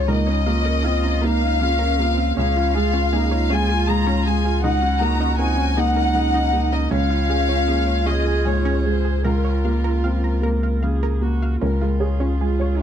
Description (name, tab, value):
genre	neoclassical piano and strings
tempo	52 BPM (dotted quarters)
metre	6/8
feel	rubato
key	Db major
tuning	A4 = 439 Hz
part	warm chamber violin section	melody	0.0-12.8 s	Ab4 to Bb5	-24 LUFS	left 4 dB	none
part	warm cello	second line	0.0-12.8 s	C4 to Ab4	-28 LUFS	right 6 dB	none
part	dark viola	accompaniment	0.0-12.8 s	Bb3 to Bb4	-30 LUFS	right 4 dB	none
part	felt-muted upright piano	accompaniment	0.0-12.8 s	Db2 to Db5	-24 LUFS	right 2 dB	none
part	pure sine sub bass	bass	0.0-12.8 s	Db2	-21 LUFS	left 1 dB	none
part	analog pluck	arpeggios	0.1-12.7 s	Db4 to Bb5	-31 LUFS	right 2 dB	chorus, slapback echo
room	little or no reverb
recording	dark, warm production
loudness	-17 LUFS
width	side -9 dB against mid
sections	0.0-11.6 A section; 11.6-12.8 A section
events	none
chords	0.1 Bbm/Db; 2.4 Db; 4.6 Ebm7/Db; 6.9 Db; 9.3 Bbm/Db; 11.6 Db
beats	| 0.09 1.23 | 2.37 3.50 | 4.64 5.78 | 6.92 8.07 | 9.25 10.44 | 11.61 12.80